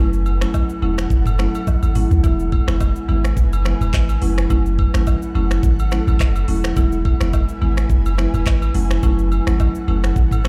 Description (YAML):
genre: afrobeats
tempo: 106 BPM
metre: 4/4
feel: swing 55% on 16ths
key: E major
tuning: A4 = 440 Hz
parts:
  - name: buzzing marimba with medium hard mallets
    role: accompaniment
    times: 0.0-10.5 s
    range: E3 to E4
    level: -26 LUFS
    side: equal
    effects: none
  - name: ethereal airy pad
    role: sustained chords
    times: 0.0-10.5 s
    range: E4 to G#5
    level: -33 LUFS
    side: equal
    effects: ensemble chorus, built-in reverb
  - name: punchy sub bass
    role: bass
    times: 0.0-10.5 s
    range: E1 to B1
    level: -20 LUFS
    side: equal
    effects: none
  - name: afro-pop drum kit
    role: drums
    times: 0.1-10.5 s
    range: finger snaps, handclaps, hi-hat, kick drum, rim click, shaker, toms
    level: -22 LUFS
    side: equal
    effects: none
  - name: agogo bells and woodblock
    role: percussion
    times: 0.3-10.4 s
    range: none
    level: -35 LUFS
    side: equal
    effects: none
room: digital ambience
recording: played on a big sound system in a bare room, large studio reverb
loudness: -18 LUFS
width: mono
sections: 0.0-2.2 A section; 2.2-10.5 B section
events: drum fill 1.7-2.2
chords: 0.0 F#m7; 2.2 E; 4.2 F#m7; 6.8 E; 8.7 F#m7